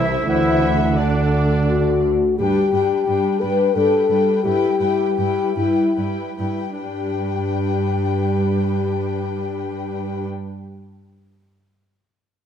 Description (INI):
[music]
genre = cinematic, emotional film score for orchestra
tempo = 70-88 BPM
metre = 3/4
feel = rubato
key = G major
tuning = A4 = 439 Hz
[part]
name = muted studio violin section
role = melody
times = 0.0-2.0 s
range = D5 to E5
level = -28 LUFS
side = left 3 dB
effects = none
[part]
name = clear oboe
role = second line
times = 0.0-2.0 s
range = D4 to E4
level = -28 LUFS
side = right 3 dB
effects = none
[part]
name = hollow concert flute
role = second line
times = 0.0-2.0 s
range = A4 to C5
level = -27 LUFS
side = left 2 dB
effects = none
[part]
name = mellow clarinet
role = second line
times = 0.0-2.0 s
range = E5 to F#5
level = -27 LUFS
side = left 2 dB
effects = none
[part]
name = muted studio violin section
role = second line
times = 0.0-10.2 s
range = B4 to G5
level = -30 LUFS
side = left 6 dB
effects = none
[part]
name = muted studio viola section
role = accompaniment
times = 0.0-10.3 s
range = G3 to E4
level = -25 LUFS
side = right 2 dB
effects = none
[part]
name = dark French horn section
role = sustained chords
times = 0.0-10.3 s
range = D3 to B4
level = -20 LUFS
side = left 5 dB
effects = none
[part]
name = muted studio cello section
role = bass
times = 0.0-10.2 s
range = G2 to D3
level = -25 LUFS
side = right 3 dB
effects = none
[part]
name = muted studio double bass section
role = bass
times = 0.0-2.1 s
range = C2 to D2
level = -22 LUFS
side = right 4 dB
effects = none
[sound]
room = moderate scoring stage reverb, RT60 1.6 s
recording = none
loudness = -17 LUFS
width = side -8 dB against mid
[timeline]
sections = 0.0-2.4 A section; 2.4-6.8 B section; 6.8-11.8 C section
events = slowing down 1.3-6.8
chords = 0.3 D; 2.4 G; 4.4 Em/G; 6.8 G